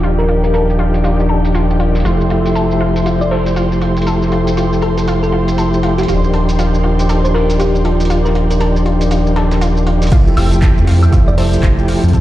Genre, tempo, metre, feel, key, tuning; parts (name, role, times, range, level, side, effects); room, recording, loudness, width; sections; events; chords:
deep house; 119 BPM; 4/4; swing 60% on 16ths; F major; A4 = 440 Hz
thumb-piano-like synth pluck; melody; 0.0-11.8 s; F4 to D5; -21 LUFS; equal; chorus, tape echo
warm analog pad; sustained chords; 0.0-12.2 s; A4 to G5; -25 LUFS; equal; chorus, sidechain pumping
analog pluck; arpeggios; 0.0-12.2 s; F4 to A4; -25 LUFS; left 2 dB; chorus, cassette tape, sidechain pumping, tape echo
tonewheel organ; stabs; 0.0-12.2 s; F3 to G4; -16 LUFS; left 1 dB; overdrive, chorus vibrato, slow rotary speaker, sidechain pumping, tape echo
round analog bass; bass; 0.0-12.2 s; Eb1 to F2; -15 LUFS; equal
damped 70s drum kit; drums; 0.0-12.2 s; hi-hat, ride cymbal, snare drum; -35 LUFS; right 1 dB; high-pass filter on cymbals, low-pass filter on cymbals, high-pass filter on hats, low-pass filter on hats, high-pass filter on snare, low-pass filter on snare, high-pass filter on room, low-pass filter on room
punchy analog drum machine; drums; 0.0-12.2 s; crash cymbal, handclaps, hi-hat, shaker, woodblock; -28 LUFS; equal; low-pass filter on hats, low-pass filter on perc, low-pass filter on cymbals, low-pass filter on snare
warm symphonic violin section; texture; 0.0-10.1 s; G4 to C6; -28 LUFS; right 2 dB
electronic kick drum; drums; 10.1-12.2 s; -12 LUFS; equal
light reverb, small room ambience; played on a big sound system in a bare room, large studio reverb, low-pass filter; -11 LUFS; side -14 dB against mid
0.0-10.1 A section; 10.1-12.2 B section
filter sweep on analog synth pad 0.0-10.1; filter sweep 0.0-10.1; drop 10.1-12.2
0.0 Ebmaj9; 2.1 Fmaj9; 6.1 Ebmaj9; 10.1 Fmaj9